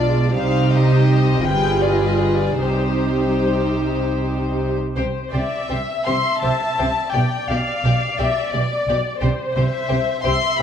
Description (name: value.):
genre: classical, slow romantic movement for string orchestra.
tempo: 50-59 BPM (dotted quarters).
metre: 6/8.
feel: rubato.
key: C minor, C major from 5.0 s.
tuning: A4 = 440 Hz.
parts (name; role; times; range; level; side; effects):
warm chamber violin section; melody; 0.0-10.6 s; C5 to C6; -23 LUFS; left 5 dB; none.
rich studio violin section; second line; 0.0-10.6 s; D4 to D5; -26 LUFS; left 4 dB; none.
dark symphonic viola section; accompaniment; 0.0-10.6 s; G3 to E5; -23 LUFS; right 2 dB; none.
warm symphonic cello section; bass; 0.0-10.6 s; G2 to C3; -25 LUFS; right 2 dB; none.
warm symphonic double bass section; bass; 0.0-10.6 s; G1 to C2; -22 LUFS; right 2 dB; none.
room: moderate recital hall reverb, RT60 1.6 s.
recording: dark, warm production.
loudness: -17 LUFS.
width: side -8 dB against mid.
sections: 0.0-5.0 A section; 5.0-10.6 B section.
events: none.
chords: 0.4 Cm; 1.5 G7b9; 2.6 Cm; 5.0 C; 7.1 G7/B; 9.2 C.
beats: | 0.37 1.46 | 2.61 3.81 | 4.98 6.07 | 7.14 8.19 | 9.22 10.24.